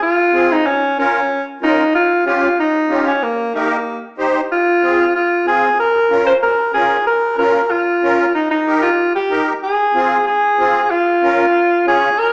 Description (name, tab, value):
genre	latin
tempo	187 BPM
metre	4/4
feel	straight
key	unclear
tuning	A4 = 440 Hz
part	raspy alto saxophone	melody	0.0-12.3 s	Bb3 to C5	-16 LUFS	equal	none
part	musette accordion	accompaniment	0.3-12.1 s	C4 to Db5	-22 LUFS	equal	none
room	wet large studio reverb, RT60 1.2 s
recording	heard from further back in the room, small speaker sound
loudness	-15 LUFS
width	mono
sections	0.0-9.6 A section; 9.6-12.3 B section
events	none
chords	0.0 Fm; 0.7 Bbm; 3.2 Eb; 4.5 Fm; 5.8 Bbm; 8.4 Eb; 9.6 Fm; 10.9 Bbm